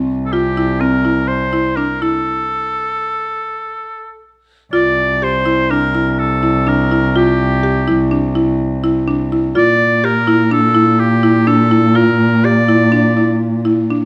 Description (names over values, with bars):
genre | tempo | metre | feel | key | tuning
contemporary instrumental, chamber music in an uneven meter | 124 BPM | 5/4 | straight | unclear | A4 = 440 Hz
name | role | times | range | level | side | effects
buzzing marimba with medium hard mallets | arpeggios | 0.0-14.0 s | C4 to G4 | -19 LUFS | equal | none
dark cello | bass | 0.0-14.1 s | C2 to Bb2 | -18 LUFS | equal | none
warm oboe | melody | 0.3-13.4 s | G4 to D5 | -19 LUFS | equal | none
room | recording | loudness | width
light reverb | none | -14 LUFS | mono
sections
0.0-4.7 A section; 4.7-14.1 B section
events
stop 2.3-4.7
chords
0.0 C7(no3); 2.3 N.C.; 4.7 C7(no3); 9.6 Bb